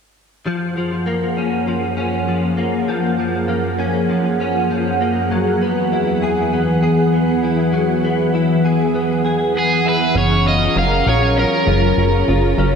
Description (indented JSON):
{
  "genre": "dream pop",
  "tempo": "99 BPM",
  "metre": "4/4",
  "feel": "straight",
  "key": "unclear",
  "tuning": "A4 = 440 Hz",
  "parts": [
    { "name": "ethereal airy pad", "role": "sustained chords", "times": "0.8-12.8 s", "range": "E2 to Bb5", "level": "-18 LUFS", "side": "equal", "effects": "ensemble chorus, built-in reverb" },
    { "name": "direct-recorded clean electric guitar", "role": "arpeggios", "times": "0.5-12.8 s", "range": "F3 to Bb4", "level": "-20 LUFS", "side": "left 1 dB", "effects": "ensemble chorus, tape echo" },
    { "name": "overdriven slide guitar", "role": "melody", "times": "9.6-12.2 s", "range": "G#4 to F5", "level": "-18 LUFS", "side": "equal", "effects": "tape echo" },
    { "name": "plucky analog bass", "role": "bass", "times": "10.2-12.8 s", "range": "Gb1 to Bb1", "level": "-17 LUFS", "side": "equal", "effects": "none" }
  ],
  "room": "wet lush hall reverb, RT60 3.1 s",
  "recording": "dreamy mix soaked in reverb",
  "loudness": "-15 LUFS",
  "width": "side -6 dB against mid",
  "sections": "0.5-10.2 A section; 10.2-12.8 B section",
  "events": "none",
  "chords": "0.5 Gbmaj7; 5.3 Eadd9; 10.2 Gbmaj7",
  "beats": "| 0.46 1.06 1.67 2.28 | 2.88 3.49 4.09 4.70 | 5.31 5.91 6.52 7.12 | 7.73 8.34 8.94 9.55 | 10.15 10.76 11.37 11.97 | 12.58"
}